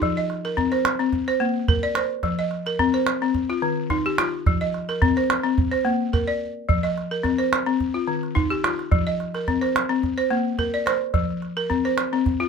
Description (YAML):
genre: west african traditional, West African string and xylophone music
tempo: 108 BPM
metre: 4/4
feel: swing 53% on 16ths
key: unclear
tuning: A4 = 440 Hz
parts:
  - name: balafon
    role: arpeggios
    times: 0.0-12.5 s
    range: Eb3 to Eb5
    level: -22 LUFS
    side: left 2 dB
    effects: none
  - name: calabash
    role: percussion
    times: 0.0-12.5 s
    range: none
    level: -24 LUFS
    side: right 3 dB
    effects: none
room: wet small room reverb, RT60 0.5 s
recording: minimal, uncompressed stereo recording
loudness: -20 LUFS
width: side -6 dB against mid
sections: 0.0-12.5 A section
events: none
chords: 0.0 F5; 1.1 Bb; 2.2 F5; 3.3 Eb; 4.5 F5; 5.6 Bb; 6.7 F5; 7.8 Eb; 8.9 F5; 10.0 Bb; 11.1 F5